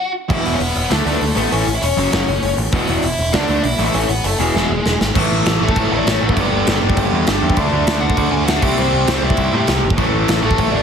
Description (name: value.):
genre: punk rock.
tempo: 198 BPM.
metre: 4/4.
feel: straight.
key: unclear.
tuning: A4 = 440 Hz.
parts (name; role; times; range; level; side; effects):
nasal lead guitar with a parked wah; melody; 0.0-10.8 s; G#3 to G#5; -21 LUFS; left 1 dB; overdrive, tape echo.
cranked stack guitar; riff; 0.3-10.8 s; E2 to D4; -19 LUFS; equal; overdrive.
growling picked electric bass; bass; 0.3-10.8 s; E1 to A2; -21 LUFS; right 1 dB; overdrive.
big rock drum kit; drums; 0.3-10.7 s; crash cymbal, hi-hat, kick drum, snare drum; -19 LUFS; equal; none.
room: light reverb.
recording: heavily compressed radio sound, multiband compression.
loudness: -14 LUFS.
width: side -7 dB against mid.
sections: 0.0-5.2 A section; 5.2-10.8 B section.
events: half time 0.0-5.2; drum fill 4.5-5.2.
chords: 0.3 E5; 0.9 D5; 1.4 A; 2.0 F#m; 2.7 E5; 3.3 D5; 3.8 A; 4.4 E; 5.2 A; 6.4 G; 7.6 D; 8.6 C; 10.0 A5.